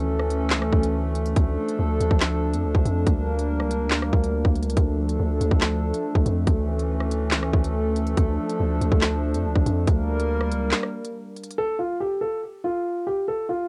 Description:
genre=hip hop, drill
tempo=141 BPM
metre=4/4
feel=half-time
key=D harmonic minor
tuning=A4 = 439 Hz
part: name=hollow soft pad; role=sustained chords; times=0.0-11.6 s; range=E3 to Bb4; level=-28 LUFS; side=equal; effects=chorus, cassette tape
part: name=long sustained 808-style bass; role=bass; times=0.0-10.7 s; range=C#2 to F2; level=-27 LUFS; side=equal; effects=none
part: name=drill drum kit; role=drums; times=0.2-11.6 s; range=handclaps, hi-hat, kick drum, rim click, snare drum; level=-25 LUFS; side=equal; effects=vintage 12-bit sampler grit
part: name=dark concert grand piano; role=melody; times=11.6-13.7 s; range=F4 to A4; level=-27 LUFS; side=equal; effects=low-pass filter, analog delay
room=little or no reverb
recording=home recording on cassette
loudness=-23 LUFS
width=mono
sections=0.0-11.6 A section; 11.6-13.7 B section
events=break 10.7-11.6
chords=0.0 A/D; 1.4 Dm; 3.1 Gm; 4.8 Dm; 6.5 A/D; 8.2 Dm; 9.9 Gm; 11.6 N.C.

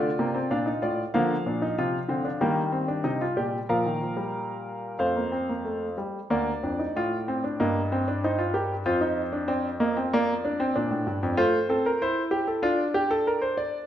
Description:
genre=classical, baroque-style 4-part fugue for grand piano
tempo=95 BPM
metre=4/4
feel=straight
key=Bb major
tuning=A4 = 440 Hz
part: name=clear grand piano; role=solo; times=0.0-13.8 s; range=D2 to F5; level=-24 LUFS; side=equal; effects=none
room=wet recital hall reverb, RT60 1.6 s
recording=minimal, uncompressed stereo recording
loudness=-24 LUFS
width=side -11 dB against mid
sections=0.0-6.3 A section; 6.3-13.9 B section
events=none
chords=0.0 Bb; 2.4 Cm/Eb; 3.7 Fsus4/Bb; 5.0 F; 6.3 Bb/D; 7.6 Eb/G; 8.9 F5; 10.1 Bb/F; 11.4 F/A; 12.6 Bb/D (rootless)

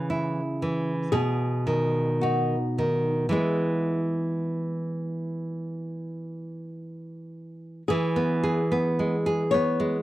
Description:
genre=romantic duo for nylon-string guitar and classical guitar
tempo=51-58 BPM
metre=4/4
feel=rubato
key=E major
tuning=A4 = 440 Hz
part: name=flamenco guitar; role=melody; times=0.0-10.0 s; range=E4 to C#5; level=-30 LUFS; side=left 3 dB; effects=none
part: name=nylon-string guitar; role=accompaniment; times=0.0-10.0 s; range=B2 to G#4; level=-25 LUFS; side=right 1 dB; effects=none
room=light reverb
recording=dry, close 1970s-style studio recording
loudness=-24 LUFS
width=side -15 dB against mid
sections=0.0-7.9 A section; 7.9-10.0 B section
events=none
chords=0.0 C#m; 1.1 B; 3.3 E

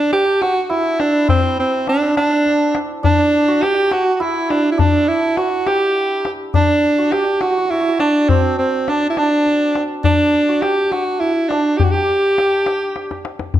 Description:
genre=Persian modal ensemble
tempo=69 BPM (dotted quarters)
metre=6/8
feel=straight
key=unclear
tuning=A4 = 440 Hz
part: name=clear alto saxophone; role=melody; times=0.0-13.2 s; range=C4 to G4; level=-15 LUFS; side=right 1 dB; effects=slapback echo
part: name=santur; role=second line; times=0.0-13.6 s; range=C4 to G4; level=-24 LUFS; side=right 1 dB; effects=none
part: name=tombak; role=percussion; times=0.1-13.6 s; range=none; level=-19 LUFS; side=left 5 dB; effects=none
room=moderate recital hall reverb, RT60 1.6 s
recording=close, detailed microphones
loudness=-14 LUFS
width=side -12 dB against mid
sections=0.0-13.5 A section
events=drum fill 12.9-13.5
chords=none

